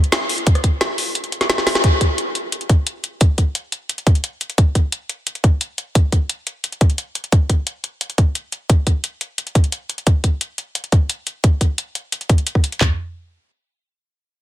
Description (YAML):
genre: drum and bass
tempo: 175 BPM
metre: 4/4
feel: straight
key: none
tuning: none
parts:
  - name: drum and bass drum kit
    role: drums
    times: 0.0-12.8 s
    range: hi-hat, rim click, snare drum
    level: -20 LUFS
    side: left 1 dB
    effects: none
  - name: drum and bass drum kit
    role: drums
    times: 0.5-12.9 s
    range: handclaps, kick drum, toms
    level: -14 LUFS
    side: equal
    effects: none
room: light reverb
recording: dense, heavily limited modern master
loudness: -17 LUFS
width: side -14 dB against mid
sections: 0.0-1.8 A section; 1.8-12.8 B section; 12.8-14.4 C section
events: drop 0.0-1.8; kick drops out 1.2-1.8; drum fill 1.6; band accent 1.8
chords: none